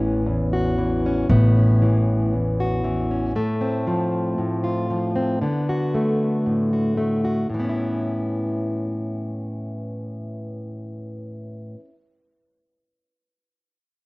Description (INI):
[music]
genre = folk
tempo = 116 BPM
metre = 4/4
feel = straight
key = A major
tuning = A4 = 440 Hz
[part]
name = fingerpicked plugged-in steel-string acoustic guitar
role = accompaniment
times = 0.0-11.9 s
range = E2 to F#4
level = -22 LUFS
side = equal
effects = cassette tape
[part]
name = upright bass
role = bass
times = 0.0-3.3 s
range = A1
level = -21 LUFS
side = equal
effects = none
[sound]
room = little or no reverb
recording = home recording on cassette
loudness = -20 LUFS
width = side -24 dB against mid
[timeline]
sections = 0.0-7.5 A section; 7.5-11.7 B section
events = none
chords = 0.0 Aadd9; 3.4 F/A; 5.4 D6; 7.5 Aadd9